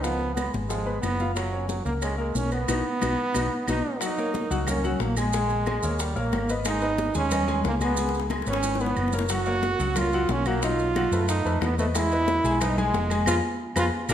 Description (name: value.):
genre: latin, salsa.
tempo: 181 BPM.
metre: 4/4.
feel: straight.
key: unclear.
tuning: A4 = 440 Hz.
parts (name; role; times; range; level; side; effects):
brilliant trombone; melody; 0.0-14.1 s; Gb3 to Gb4; -27 LUFS; right 3 dB; none.
clear concert grand piano; accompaniment; 0.0-14.1 s; F3 to Ab5; -29 LUFS; left 3 dB; none.
hollow-body short-scale fingered electric bass; bass; 0.0-14.1 s; F1 to F#2; -29 LUFS; equal; none.
bongos; percussion; 0.0-14.1 s; none; -36 LUFS; left 7 dB; none.
congas; percussion; 0.0-14.1 s; none; -33 LUFS; left 2 dB; none.
maracas; percussion; 0.0-14.1 s; none; -37 LUFS; right 5 dB; none.
claves; percussion; 0.4-14.1 s; none; -38 LUFS; equal; none.
room: wet recital hall reverb, RT60 1.4 s.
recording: lossy compression artefacts.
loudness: -23 LUFS.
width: side -10 dB against mid.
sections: 0.0-4.0 A section; 4.0-14.1 B section.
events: band accent 2.7-4.0, 13.3-14.1; drum fill 3.2-4.0, 8.0-9.3, 13.8-14.1.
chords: 0.0 Db7; 1.4 Gbmaj7; 2.7 B; 4.0 Gb6; 5.3 Bbm7; 6.0 Eb5; 6.7 Abmadd11; 8.0 Db5; 9.3 Gbmaj7; 10.6 B7; 11.9 Emaj7; 13.3 Fdim.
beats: | 0.04 0.37 0.70 1.03 | 1.36 1.69 2.03 2.36 | 2.69 3.02 3.35 3.68 | 4.01 4.34 4.67 5.00 | 5.33 5.67 6.00 6.33 | 6.66 6.99 7.32 7.65 | 7.98 8.31 8.64 8.97 | 9.30 9.63 9.96 10.29 | 10.62 10.96 11.29 11.62 | 11.95 12.28 12.61 12.94 | 13.27 13.60 13.94.